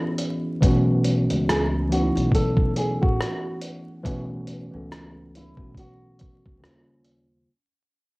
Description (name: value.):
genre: lo-fi hip hop.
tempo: 70 BPM.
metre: 4/4.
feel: swing 56% on 16ths.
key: unclear.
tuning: A4 = 443 Hz.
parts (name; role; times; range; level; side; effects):
nylon-string guitar; melody; 0.0-7.3 s; B#3 to A4; -28 LUFS; equal; low-pass filter, cassette tape.
mellow tine electric piano; accompaniment; 0.0-7.5 s; C#3 to D#5; -26 LUFS; equal; medium stereo tremolo, cassette tape, low-pass filter.
dusty soul sampler-style drum kit; drums; 0.2-7.3 s; hi-hat, kick drum, rim click; -25 LUFS; equal; vintage 12-bit sampler grit, cassette tape.
upright bass; bass; 0.6-7.4 s; A1 to D#2; -25 LUFS; equal; transformer saturation.
room: light reverb.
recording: home recording on cassette, vinyl crackle.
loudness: -20 LUFS.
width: side -24 dB against mid.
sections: 0.0-7.5 A section.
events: fade-out 0.0-7.5.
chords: 0.0 C#m9; 0.6 B7sus4; 6.6 D#13.